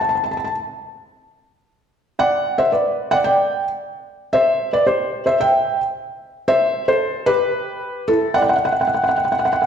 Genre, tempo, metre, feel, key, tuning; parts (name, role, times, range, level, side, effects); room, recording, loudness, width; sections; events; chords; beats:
calypso; 112 BPM; 4/4; straight; A4 = 440 Hz
felt-muted upright piano; solo; 0.0-9.7 s; E4 to A5; -16 LUFS; equal
wet recital hall reverb, RT60 1.6 s; recorded in a church or concert hall; -16 LUFS; side -8 dB against mid
0.0-9.7 A section
0.0 N.C.; 2.2 Bm; 4.3 C; 6.5 Am; 8.6 N.C.
| 0.02 0.56 1.09 1.63 | 2.17 2.70 3.24 3.78 | 4.31 4.85 5.39 5.92 | 6.46 7.00 7.53 8.07 | 8.60 9.14